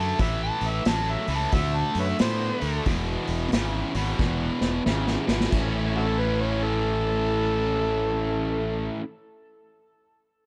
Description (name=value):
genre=blues rock power trio and southern rock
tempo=90 BPM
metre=4/4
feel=swing 63% on 8ths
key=A major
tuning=A4 = 440 Hz
part: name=overdriven harmonica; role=melody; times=0.0-9.0 s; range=D4 to A5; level=-31 LUFS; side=equal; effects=none
part: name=tight distorted guitar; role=riff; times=0.0-9.0 s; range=E2 to E4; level=-30 LUFS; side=equal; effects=distortion
part: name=fuzz fingered electric bass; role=bass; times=0.0-8.9 s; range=E1 to A2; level=-31 LUFS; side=equal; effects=overdrive
part: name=vintage drum kit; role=drums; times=0.2-5.7 s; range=crash cymbal, hi-hat, kick drum, snare drum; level=-30 LUFS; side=equal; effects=none
room=small room ambience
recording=none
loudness=-25 LUFS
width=mono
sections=0.0-5.5 A section; 5.5-8.2 B section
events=drum fill 4.2-5.5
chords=0.2 A; 1.5 D7; 2.9 E; 5.5 A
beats=| 0.20 0.87 1.53 2.20 | 2.87 3.53 4.20 4.87 | 5.53 6.20 6.87 7.53